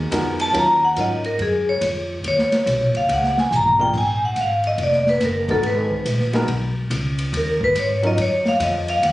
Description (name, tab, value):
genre	jazz, small-group swing and bop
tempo	142 BPM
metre	4/4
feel	swing 65% on 8ths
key	Eb minor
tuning	A4 = 440 Hz
part	warm baby grand piano	accompaniment	0.0-1.2, 3.8-8.2 s	Gb3 to Bb4	-24 LUFS	equal	none
part	upright bass	bass	0.0-9.1 s	F1 to Ab2	-24 LUFS	equal	none
part	open jazz drum kit	drums	0.1-9.1 s	crash cymbal, hi-hat, kick drum, ride cymbal, snare drum, toms	-27 LUFS	equal	none
part	vibraphone with medium hard mallets	melody	0.4-9.1 s	Ab4 to Bb5	-18 LUFS	equal	none
room	light reverb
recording	recorded on a phone in the room, studio reverb, compression, nothing above 10.7 kHz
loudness	-17 LUFS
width	side -16 dB against mid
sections	0.0-9.1 A section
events	vibraphone solo 0.0-9.1; drum fill 3.5-3.9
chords	0.0 Abm7; 0.5 Ebm7; 3.9 Bb5; 5.6 Abm; 7.3 Ebm7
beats	0.12 | 0.54 0.97 1.39 1.82 | 2.24 2.67 3.09 3.51 | 3.94 4.36 4.79 5.21 | 5.63 6.06 6.48 6.91 | 7.33 7.75 8.18 8.60 | 9.03